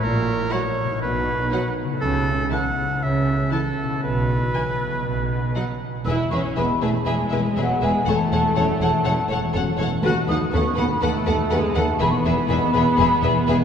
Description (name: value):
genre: cinematic, playful, whimsical film cue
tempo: 121 BPM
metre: 4/4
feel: straight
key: E major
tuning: A4 = 435 Hz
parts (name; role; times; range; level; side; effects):
- clear oboe; second line; 0.0-5.8 s; A4 to F#5; -26 LUFS; right 1 dB; none
- concert harp; arpeggios; 0.0-13.6 s; A#2 to E5; -27 LUFS; left 4 dB; none
- rich chamber double bass section; bass; 0.0-13.6 s; E1 to D#2; -27 LUFS; right 2 dB; none
- warm chamber cello section; bass; 0.0-13.6 s; D#2 to C#3; -27 LUFS; right 2 dB; none
- rich chamber violin section; melody; 0.5-13.5 s; E5 to A5; -34 LUFS; left 5 dB; none
- rich studio violin section; second line; 0.5-13.6 s; D#4 to C#5; -29 LUFS; left 2 dB; none
- rich chamber viola section; accompaniment; 0.5-13.6 s; E3 to F#4; -27 LUFS; right 1 dB; none
- mellow hollow flute section; second line; 6.0-13.5 s; F#5 to F#6; -24 LUFS; left 1 dB; none
- dark French horn section; sustained chords; 6.6-13.6 s; F#3 to C#4; -31 LUFS; left 3 dB; none
room: wet cathedral reverb, RT60 6.4 s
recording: recorded in a church or concert hall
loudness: -19 LUFS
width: side -8 dB against mid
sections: 0.0-6.1 A section; 6.1-13.6 B section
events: none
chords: 0.0 F#7/A#; 1.0 B; 2.0 A/C#; 4.0 E/B; 5.0 B; 6.1 E; 8.1 F#m7/E; 10.0 B7/D#; 12.0 E